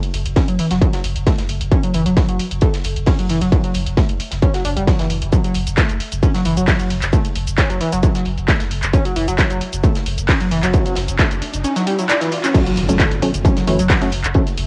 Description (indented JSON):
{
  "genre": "driving peak-time techno",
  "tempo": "133 BPM",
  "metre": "4/4",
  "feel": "straight",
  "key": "F# minor",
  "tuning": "A4 = 436 Hz",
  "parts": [
    { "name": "punchy analog drum machine", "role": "drums", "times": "0.0-14.7 s", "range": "crash cymbal, handclaps, hi-hat, shaker", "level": "-26 LUFS", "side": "equal", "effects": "sidechain pumping on hats, cassette tape, sidechain pumping on cymbals, sidechain pumping on perc" },
    { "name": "saturated sub bass", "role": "bass", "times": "0.1-14.7 s", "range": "F#1", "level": "-26 LUFS", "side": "equal", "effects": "tube saturation, sidechain pumping, low-pass filter" },
    { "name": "tight metal drum kit", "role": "drums", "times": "0.1-14.7 s", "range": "hi-hat, ride cymbal, snare drum", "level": "-37 LUFS", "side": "equal", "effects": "none" },
    { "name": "overdriven synth lead", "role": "riff", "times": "0.4-14.4 s", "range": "E3 to D4", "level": "-24 LUFS", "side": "equal", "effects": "distortion, subtle chorus, sidechain pumping, cassette tape, tape echo" },
    { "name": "electronic kick drum", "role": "drums", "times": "0.4-14.4 s", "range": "none", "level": "-18 LUFS", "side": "equal", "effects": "distortion, overdrive, cassette tape" },
    { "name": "riser and impact", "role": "sound effects", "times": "10.3-14.3 s", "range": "none", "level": "-30 LUFS", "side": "equal", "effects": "none" },
    { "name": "filtered dub chord stab", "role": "stabs", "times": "12.5-14.4 s", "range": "F#3 to C#4", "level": "-23 LUFS", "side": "equal", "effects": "subtle chorus, sidechain pumping, cassette tape, analog delay" }
  ],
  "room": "little or no reverb",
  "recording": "home recording on cassette",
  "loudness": "-17 LUFS",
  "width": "mono",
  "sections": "0.0-12.5 A section; 12.5-14.7 B section",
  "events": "filter sweep on analog synth lead 0.0-12.5; riser 10.3-12.5; drop 12.5-14.7; impact 12.5-14.3",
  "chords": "0.0 N.C.; 12.5 F#m",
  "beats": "0.36 0.81 1.27 | 1.72 2.17 2.62 3.07 | 3.52 3.97 4.42 4.88 | 5.33 5.78 6.23 6.68 | 7.13 7.58 8.03 8.48 | 8.94 9.39 9.84 10.29 | 10.74 11.19 11.64 12.09 | 12.54 12.99 13.45 13.90 | 14.35"
}